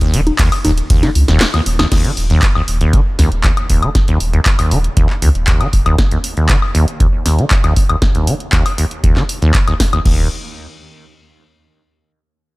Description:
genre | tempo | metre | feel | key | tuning
acid house | 118 BPM | 4/4 | straight | unclear | A4 = 439 Hz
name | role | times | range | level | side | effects
acid bass, saw | riff | 0.0-10.3 s | Eb2 to Eb3 | -16 LUFS | equal | lush chorus, sidechain pumping, analog delay
electronic kick drum | drums | 0.0-10.2 s | none | -14 LUFS | equal | none
punchy analog drum machine | drums | 0.0-10.2 s | congas, crash cymbal, handclaps, hi-hat, ride cymbal, snare drum, woodblock | -18 LUFS | left 1 dB | none
warm sub bass | bass | 0.1-5.9, 10.1-10.3 s | Eb1 to Db2 | -16 LUFS | equal | sidechain pumping
room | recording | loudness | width
little or no reverb | none | -11 LUFS | side -22 dB against mid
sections
0.0-1.9 A section; 1.9-10.1 B section; 10.1-12.1 C section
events
drop 0.0-1.9; kick drops out 1.4-1.9; drum fill 1.4-1.9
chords
0.0 Eb5; 10.1 N.C.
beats
0.39 0.90 1.41 | 1.92 2.43 2.94 3.44 | 3.95 4.46 4.97 5.48 | 5.99 6.49 7.00 7.51 | 8.02 8.53 9.04 9.54 | 10.05

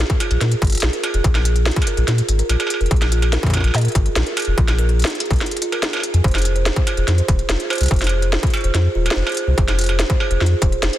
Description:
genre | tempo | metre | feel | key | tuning
IDM | 144 BPM | 4/4 | straight | unclear | A4 = 440 Hz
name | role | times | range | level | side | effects
buzzing kalimba | arpeggios | 0.0-11.0 s | F4 to Ab5 | -24 LUFS | right 4 dB | tape echo
warm sub bass | bass | 0.0-10.9 s | Eb1 to Bb2 | -17 LUFS | equal | none
electronic kick drum | drums | 0.1-10.7 s | none | -18 LUFS | equal | distortion
industrial drum kit | drums | 0.1-11.0 s | hi-hat, snare drum, struck metal | -22 LUFS | equal | dub echo
room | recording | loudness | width
little or no reverb | dense, heavily limited modern master | -15 LUFS | side -13 dB against mid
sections
0.0-11.0 A section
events
none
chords
0.0 Bb5; 6.2 Fm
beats
0.41 0.83 | 1.24 1.66 2.08 2.49 | 2.91 3.33 3.74 4.16 | 4.58 4.99 5.41 5.83 | 6.24 6.66 7.08 7.49 | 7.91 8.33 8.74 9.16 | 9.58 9.99 10.41 10.83

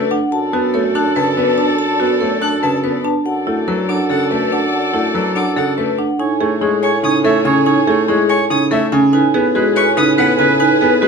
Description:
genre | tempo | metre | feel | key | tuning
classical, minimalist pattern music | 286 BPM (eighths) | 7/8 | straight | A lydian from 6.2 s | A4 = 441 Hz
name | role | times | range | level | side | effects
vibraphone with medium hard mallets | melody | 0.0-11.1 s | G#4 to A5 | -21 LUFS | left 2 dB | none
warm oboe | second line | 0.0-11.1 s | A4 to C#5 | -22 LUFS | right 3 dB | none
bright baby grand piano | accompaniment | 0.0-11.1 s | C#3 to B3 | -19 LUFS | left 2 dB | none
rich chamber string section | sustained chords | 0.0-11.1 s | G#4 to D5 | -24 LUFS | left 2 dB | none
dark bassoon | bass | 0.0-11.1 s | F#2 to A2 | -22 LUFS | equal | none
marimba with medium hard mallets | arpeggios | 0.1-11.1 s | C#4 to C#5 | -19 LUFS | right 5 dB | none
warm violin | arpeggios | 1.0-10.3 s | E5 to F#6 | -21 LUFS | left 5 dB | none
room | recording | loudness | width
light reverb | close, detailed microphones | -13 LUFS | side -5 dB against mid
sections
0.0-6.2 A section; 6.2-11.1 B section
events
none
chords
0.3 Bm7/F#; 3.3 E9sus4/F#; 6.2 Amaj7; 9.1 G#m7/A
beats
0.11 | 0.32 0.53 0.74 0.95 1.16 1.37 1.58 | 1.79 2.00 2.21 2.42 2.63 2.84 3.05 | 3.26 3.47 3.68 3.89 4.10 4.31 4.52 | 4.73 4.93 5.14 5.36 5.57 5.78 5.98 | 6.19 6.40 6.61 6.82 7.03 7.24 7.45 | 7.66 7.87 8.08 8.29 8.50 8.71 8.92 | 9.13 9.34 9.55 9.76 9.97 10.18 10.39 | 10.60 10.81 11.02

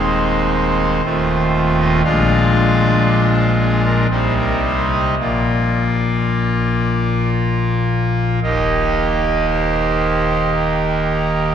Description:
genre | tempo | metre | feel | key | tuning
classical, chorale-style piece for pipe organ | 55-60 BPM | 3/4 | rubato | Eb major | A4 = 440 Hz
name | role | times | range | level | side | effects
pipe organ, trumpet | solo | 0.0-11.5 s | Eb1 to F5 | -14 LUFS | equal | none
room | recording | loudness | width
wet cathedral reverb, RT60 4.6 s | dark, warm production, nothing above 10.9 kHz | -14 LUFS | side -8 dB against mid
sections
0.0-11.5 A section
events
none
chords
0.0 Ab/Eb; 1.0 F7/Eb; 2.1 Bb7; 4.1 Cm; 5.2 Bb; 8.4 Eb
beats
0.04 1.05 | 2.06 3.07 4.11 | 5.19 6.26 7.34 | 8.43 9.49 10.53

